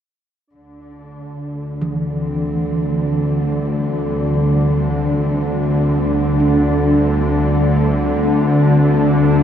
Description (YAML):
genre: dark ambient drone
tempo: free time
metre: none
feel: none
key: unclear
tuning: A4 = 436 Hz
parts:
  - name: warm studio cello section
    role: sustained chords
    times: 0.5-9.4 s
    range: D3 to C4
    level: -28 LUFS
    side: equal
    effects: none
  - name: bowed-like drone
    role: drone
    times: 1.3-9.4 s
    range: D2 to D3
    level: -15 LUFS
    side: equal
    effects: built-in reverb
  - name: bubbling stepped-filter texture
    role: texture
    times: 0.5-9.4 s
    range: D4 to D5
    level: -32 LUFS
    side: equal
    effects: chorus, built-in reverb
  - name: gamelan-type bronze metallophone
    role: arpeggios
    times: 1.8-9.4 s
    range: E3 to D4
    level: -24 LUFS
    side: right 2 dB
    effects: tape echo
room: wet huge ambient reverb, RT60 8.1 s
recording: dark, warm production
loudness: -14 LUFS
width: side -9 dB against mid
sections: 0.5-9.4 A section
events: fade-in on cello section 0.5-9.4; fade-in on synth texture 0.5-9.4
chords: 0.5 Dsus2